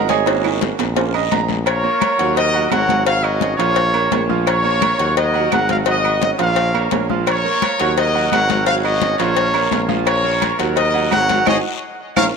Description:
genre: latin, salsa.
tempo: 171 BPM.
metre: 4/4.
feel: straight.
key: Bb minor.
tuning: A4 = 438 Hz.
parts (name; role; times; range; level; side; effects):
clear concert grand piano; accompaniment; 0.0-12.3 s; F3 to Bb5; -22 LUFS; right 10 dB; none.
clear tuba; bass; 0.0-12.3 s; Ab1 to Eb2; -22 LUFS; left 1 dB; none.
congas; percussion; 0.1-12.2 s; none; -25 LUFS; left 14 dB; none.
cowbell; percussion; 0.1-12.2 s; none; -24 LUFS; left 13 dB; none.
guiro; percussion; 0.1-1.7, 7.3-12.2 s; none; -31 LUFS; left 14 dB; none.
timbales and agogo bells; percussion; 0.3-12.2 s; none; -26 LUFS; right 11 dB; none.
claves; percussion; 0.4-12.2 s; none; -30 LUFS; right 12 dB; none.
bright trumpet section; melody; 1.7-12.3 s; F4 to Gb5; -18 LUFS; left 1 dB; tape echo.
room: moderate echo chamber reverb, RT60 1.8 s, small room ambience.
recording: 1960s-style stereo with parts hard left and right, lossy compression artefacts.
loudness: -14 LUFS.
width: side -5 dB against mid.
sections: 0.0-1.7 A section; 1.7-12.4 B section.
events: grand piano solo 0.0-1.7; drum fill 0.3-1.7, 12.0-12.4; band accent 11.5-12.4.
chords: 0.3 Ab7sus4; 1.0 Bbm; 2.4 Ebm7; 3.1 Ab7sus4; 3.8 Bbm; 5.2 Ebm; 5.9 Ab7sus4; 6.6 Bbm; 8.0 Ebm7; 8.7 Ab7sus4; 9.4 Bbm; 10.8 Ebm7.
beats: | 0.27 0.62 0.97 1.32 | 1.67 2.02 2.37 2.72 | 3.07 3.42 3.77 4.12 | 4.47 4.82 5.17 5.52 | 5.87 6.22 6.57 6.92 | 7.27 7.62 7.97 8.32 | 8.67 9.02 9.37 9.72 | 10.07 10.42 10.77 11.12 | 11.47 11.82 12.17.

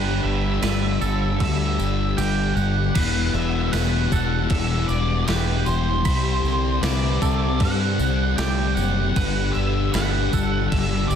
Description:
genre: rock, shoegaze and dream pop.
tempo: 77 BPM.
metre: 4/4.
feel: straight.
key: E minor.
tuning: A4 = 440 Hz.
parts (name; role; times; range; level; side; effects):
octave-fuzz lead guitar; melody; 0.0-11.2 s; B4 to G5; -28 LUFS; right 4 dB; distortion, slapback echo.
string machine, violas; sustained chords; 0.0-11.2 s; B2 to D6; -31 LUFS; right 1 dB; ensemble chorus.
twangy electric guitar; arpeggios; 0.0-11.1 s; G4 to B5; -33 LUFS; right 9 dB; analog chorus, slapback echo.
overdriven semi-hollow guitar; riff; 0.0-2.9 s; G2 to G4; -28 LUFS; right 10 dB; reverse reverb.
thick fuzz guitar; riff; 0.0-11.2 s; E2 to C4; -25 LUFS; left 12 dB; distortion, wide subtle chorus.
growling fingered electric bass; bass; 0.0-11.2 s; E1 to G2; -24 LUFS; right 1 dB; overdrive.
gated 80s digital drum machine; drums; 0.6-10.9 s; crash cymbal, kick drum, snare drum; -27 LUFS; right 1 dB; gated reverb, gated reverb snare, overdrive.
tambourine; percussion; 0.6-11.2 s; none; -39 LUFS; right 9 dB; none.
room: digital ambience.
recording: dense, heavily limited modern master.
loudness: -19 LUFS.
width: side -8 dB against mid.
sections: 0.0-3.0 A section; 3.0-11.2 A section.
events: kick and snare drop out 2.2-3.0.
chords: 0.0 G; 3.0 Emadd9; 6.1 Csus2; 9.2 G.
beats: 0.62 1.40 2.18 | 2.95 3.73 4.51 5.28 | 6.06 6.83 7.61 8.39 | 9.16 9.94 10.71.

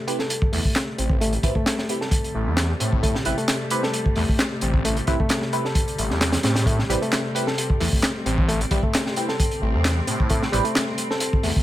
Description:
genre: breakbeat, breaks.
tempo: 132 BPM.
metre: 4/4.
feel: straight.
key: A minor.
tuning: A4 = 440 Hz.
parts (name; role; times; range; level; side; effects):
dark studio string section; sustained chords; 0.0-11.6 s; C3 to C4; -31 LUFS; left 1 dB; sidechain pumping.
overdriven reed electric piano; riff; 0.0-11.6 s; G3 to A4; -28 LUFS; left 1 dB; vintage 12-bit sampler grit, low-pass filter, digital delay.
band-passed chord stab; stabs; 0.1-10.6 s; C4 to B4; -29 LUFS; right 2 dB; phaser, analog chorus, vintage 12-bit sampler grit, digital delay.
crunchy breakbeat drum kit; drums; 0.1-11.6 s; hi-hat, kick drum, snare drum; -23 LUFS; equal; none.
phased detuned saw bass; bass; 0.5-11.5 s; A1 to A2; -24 LUFS; equal; phaser.
electronic handclaps; drums; 0.8-10.9 s; none; -28 LUFS; equal; overdrive.
room: small room ambience.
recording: none.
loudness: -20 LUFS.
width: side -14 dB against mid.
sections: 0.0-11.6 A section.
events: filter sweep on reed electric piano 0.0-11.6.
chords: 0.0 Am9.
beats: 0.30 0.76 | 1.21 1.67 2.12 2.58 | 3.03 3.48 3.94 4.39 | 4.85 5.30 5.76 6.21 | 6.67 7.12 7.58 8.03 | 8.48 8.94 9.39 9.85 | 10.30 10.76 11.21.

